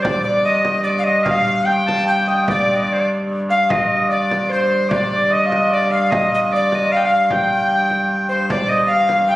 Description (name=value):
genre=medieval dance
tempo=149 BPM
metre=3/4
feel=straight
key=unclear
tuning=A4 = 440 Hz
part: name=alto recorder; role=melody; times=0.0-9.4 s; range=C5 to G5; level=-19 LUFS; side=left 1 dB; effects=slapback echo
part: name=Celtic harp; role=second line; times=0.0-9.4 s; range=C5 to G5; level=-20 LUFS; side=right 1 dB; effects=none
part: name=edgy shawm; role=second line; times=0.0-9.4 s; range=C5 to A5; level=-22 LUFS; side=left 1 dB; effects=none
part: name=warm hurdy-gurdy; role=drone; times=0.0-9.4 s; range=G2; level=-23 LUFS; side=equal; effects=none
part: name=frame drum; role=percussion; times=0.0-9.4 s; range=none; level=-27 LUFS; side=equal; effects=none
room=wet recital hall reverb, RT60 1.5 s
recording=recorded on a phone in the room, studio reverb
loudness=-15 LUFS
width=side -16 dB against mid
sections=0.0-8.5 A section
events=none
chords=none